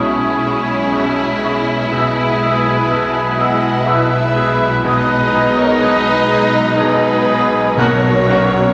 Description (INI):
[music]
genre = cinematic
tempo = 61 BPM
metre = 3/4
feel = rubato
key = unclear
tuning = A4 = 443 Hz
[part]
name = rich studio violin section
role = melody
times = 0.0-8.4 s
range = D#4 to F#4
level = -22 LUFS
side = equal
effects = none
[part]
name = large flute ensemble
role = second line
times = 0.0-8.4 s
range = C#6 to F#6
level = -27 LUFS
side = equal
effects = none
[part]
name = mellow clarinet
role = second line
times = 0.0-8.5 s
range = G#4 to A#4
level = -30 LUFS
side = equal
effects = none
[part]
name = warm oboe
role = second line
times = 0.0-8.5 s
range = E4 to D#5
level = -22 LUFS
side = equal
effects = none
[part]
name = warm symphonic violin section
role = second line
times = 0.0-8.7 s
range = G#4 to F#5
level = -24 LUFS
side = equal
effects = none
[part]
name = bright grand piano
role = accompaniment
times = 0.0-8.7 s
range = B1 to A#4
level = -24 LUFS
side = equal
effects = none
[part]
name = rich chamber viola section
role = accompaniment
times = 0.0-8.4 s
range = G#3 to C#4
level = -26 LUFS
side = equal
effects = none
[part]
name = mellow French horn section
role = sustained chords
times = 0.0-8.7 s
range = G#3 to F#4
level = -27 LUFS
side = equal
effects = none
[part]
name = concert harp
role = arpeggios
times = 0.0-8.7 s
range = B2 to G#5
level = -28 LUFS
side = equal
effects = none
[part]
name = rich symphonic cello section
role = bass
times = 0.0-8.7 s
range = B2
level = -24 LUFS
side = equal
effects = none
[part]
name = warm symphonic double bass section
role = bass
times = 0.0-8.7 s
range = B1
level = -27 LUFS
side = equal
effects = none
[part]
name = timpani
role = percussion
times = 7.8-8.7 s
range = B2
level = -26 LUFS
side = equal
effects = none
[sound]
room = wet recital hall reverb, RT60 1.6 s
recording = none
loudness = -15 LUFS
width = mono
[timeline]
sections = 0.0-8.7 A section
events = none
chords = 0.0 C#m/B; 1.9 E/B; 4.8 G#m/B; 7.8 F#/B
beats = 0.93 | 1.92 2.89 3.87 | 4.84 5.81 6.79 | 7.77